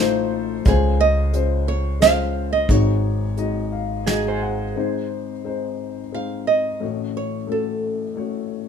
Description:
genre	acoustic folk-pop ballad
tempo	88 BPM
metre	3/4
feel	straight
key	unclear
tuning	A4 = 441 Hz
part	dark upright piano	accompaniment	0.0-8.7 s	Ab1 to Ab5	-24 LUFS	left 7 dB	none
part	electric guitar through a small old amp	arpeggios	0.0-0.6, 4.1-5.3 s	Ab4 to C5	-28 LUFS	right 8 dB	harmonic tremolo
part	upright bass	bass	0.0-4.7 s	Ab1 to Db2	-22 LUFS	right 1 dB	none
part	nylon-string guitar	melody	0.7-8.5 s	Ab4 to F5	-21 LUFS	right 5 dB	none
part	soft brush drum kit	drums	0.7-4.2 s	hi-hat, kick drum, snare drum	-21 LUFS	equal	none
room	light reverb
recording	minimal, uncompressed stereo recording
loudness	-19 LUFS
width	side -7 dB against mid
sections	0.0-4.8 A section; 4.8-8.7 B section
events	none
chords	0.0 F7/A; 0.7 Dbmaj7; 2.7 Ab7sus4; 4.8 Ab; 6.8 Gbm/A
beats	| 0.66 1.33 2.01 | 2.69 3.37 4.07 | 4.76 5.45 6.13 | 6.81 7.49 8.17

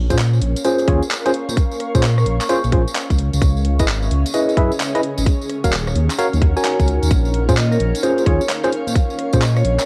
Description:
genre	UK garage, two-step garage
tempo	130 BPM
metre	4/4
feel	swing 64% on 16ths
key	Bb minor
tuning	A4 = 440 Hz
part	airy breathy pad	sustained chords	0.0-9.9 s	Db4 to Db5	-33 LUFS	equal	chorus, vintage 12-bit sampler grit, sidechain pumping, cassette tape
part	dark detuned saw bass	bass	0.0-9.8 s	Eb1 to Bb2	-20 LUFS	equal	none
part	granular cloud pad	texture	0.5-9.9 s	Db4 to Db6	-30 LUFS	equal	built-in reverb, sidechain pumping, cassette tape
part	tine electric piano	stabs	0.1-9.4 s	Db4 to Ab5	-22 LUFS	equal	overdrive, cassette tape, analog delay
part	electronic kick drum	drums	0.1-9.4 s	none	-19 LUFS	equal	overdrive, cassette tape
part	garage drum kit	drums	0.1-9.9 s	handclaps, hi-hat, rim click	-28 LUFS	equal	overdrive, cassette tape
part	tambourine	percussion	0.1-9.9 s	none	-34 LUFS	equal	none
part	vibraphone with medium hard mallets	melody	7.6-9.7 s	Bb4 to Eb5	-26 LUFS	equal	cassette tape
room	light reverb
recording	home recording on cassette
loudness	-18 LUFS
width	mono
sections	0.0-9.9 A section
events	none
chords	0.0 Bbm9; 3.2 Dbm9; 5.3 Ebm7; 7.1 Bbm9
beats	0.18 0.65 1.11 | 1.57 2.03 2.49 2.96 | 3.42 3.88 4.34 4.80 | 5.26 5.72 6.18 6.65 | 7.11 7.57 8.03 8.49 | 8.96 9.42

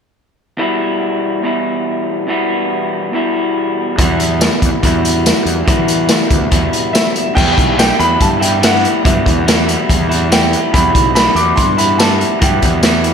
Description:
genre	indie rock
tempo	142 BPM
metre	4/4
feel	straight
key	E minor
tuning	A4 = 439 Hz
part	electric guitar through a small old amp	riff	0.6-13.1 s	E2 to E4	-16 LUFS	equal	slapback echo
part	fuzz fingered electric bass	bass	4.0-13.1 s	B1 to E3	-18 LUFS	equal	overdrive
part	raw garage drum kit	drums	4.0-13.1 s	crash cymbal, hi-hat, kick drum, snare drum, tambourine	-14 LUFS	equal	none
part	warm upright piano	melody	6.9-13.1 s	E5 to D6	-16 LUFS	right 1 dB	slapback echo
room	moderate lush hall reverb, RT60 1.6 s, small room ambience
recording	big arena sound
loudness	-11 LUFS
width	side -7 dB against mid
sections	0.6-7.4 A section; 7.4-13.1 B section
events	none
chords	0.6 Em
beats	| 0.59 1.01 1.44 1.86 | 2.28 2.71 3.13 3.56 | 3.98 4.40 4.83 5.25 | 5.67 6.09 6.52 6.94 | 7.36 7.78 8.20 8.63 | 9.05 9.47 9.89 10.31 | 10.73 11.15 11.58 12.00 | 12.42 12.84

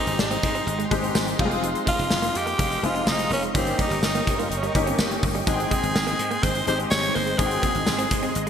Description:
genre	1980s-style pop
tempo	125 BPM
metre	4/4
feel	straight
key	unclear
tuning	A4 = 440 Hz
part	raspy tenor saxophone	melody	0.0-8.3 s	C4 to Db5	-26 LUFS	equal	digital delay
part	clear baby grand piano	accompaniment	0.0-8.5 s	G3 to G5	-28 LUFS	left 3 dB	analog chorus
part	string machine, violas	sustained chords	0.0-8.5 s	Ab3 to Db6	-31 LUFS	equal	phaser, ensemble chorus
part	dry thumbed slap bass	bass	0.1-8.5 s	F1 to Ab2	-30 LUFS	equal	none
part	gated 80s drum kit	drums	0.1-8.5 s	crash cymbal, hi-hat, kick drum, snare drum, tambourine	-26 LUFS	equal	none
part	direct-recorded clean electric guitar	riff	0.3-8.5 s	F3 to C4	-34 LUFS	right 6 dB	lush chorus
room	wet lush hall reverb, RT60 1.9 s, small room ambience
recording	bright 1980s-style digital production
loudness	-21 LUFS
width	side -8 dB against mid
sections	0.0-8.5 A section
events	none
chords	0.0 Abmaj7; 1.4 Fm7; 3.6 Eb7/G; 5.5 Abmaj7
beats	0.19 0.67 1.15 | 1.63 2.11 2.59 3.07 | 3.55 4.03 4.51 4.99 | 5.47 5.95 6.43 6.91 | 7.39 7.87 8.35

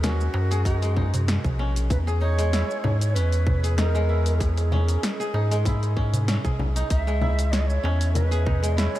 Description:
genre	organic downtempo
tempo	96 BPM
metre	4/4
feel	swing 54% on 16ths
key	unclear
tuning	A4 = 443 Hz
part	mellow Native American-style cedar flute	melody	0.0-9.0 s	F#4 to E5	-32 LUFS	right 2 dB	tape echo
part	kora	arpeggios	0.0-9.0 s	G#3 to G#4	-30 LUFS	equal	diffuse ambient delay
part	warm sub bass	bass	0.0-8.9 s	A#1 to G#2	-22 LUFS	equal	none
part	deep house drum kit	drums	0.0-9.0 s	congas, hi-hat, shaker, snare drum	-31 LUFS	left 1 dB	overdrive
part	darbuka	percussion	0.3-9.0 s	none	-32 LUFS	right 1 dB	none
part	electronic kick drum	drums	0.7-8.6 s	none	-25 LUFS	equal	overdrive
room	light reverb, digital ambience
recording	none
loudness	-21 LUFS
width	side -14 dB against mid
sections	0.0-9.0 A section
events	none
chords	0.0 D#m; 1.9 Emaj7; 6.9 C#m7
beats	0.03 0.66 1.28 | 1.91 2.53 3.15 3.78 | 4.41 5.03 5.66 6.28 | 6.91 7.53 8.15 8.78

